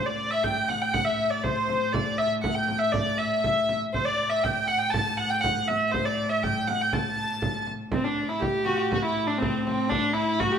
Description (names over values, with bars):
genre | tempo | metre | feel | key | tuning
medieval dance | 120 BPM | 2/4 | straight | A dorian | A4 = 436 Hz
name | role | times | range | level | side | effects
clear hurdy-gurdy | melody | 0.0-10.6 s | C4 to A5 | -25 LUFS | equal | none
rich viola da gamba | drone | 0.0-10.6 s | A2 | -32 LUFS | left 3 dB | none
frame drum | percussion | 0.2-10.6 s | none | -32 LUFS | right 2 dB | none
rich fiddle | second line | 7.9-10.6 s | C4 to G4 | -31 LUFS | left 2 dB | none
room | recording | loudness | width
wet large studio reverb, RT60 1.2 s | band playing live in one room | -23 LUFS | side -7 dB against mid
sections
0.0-7.9 A section; 7.9-10.6 A section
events
none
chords
none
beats
0.44 | 0.94 1.44 | 1.94 2.44 | 2.94 3.44 | 3.94 4.43 | 4.93 5.43 | 5.93 6.43 | 6.93 7.42 | 7.92 8.42 | 8.92 9.41 | 9.91 10.41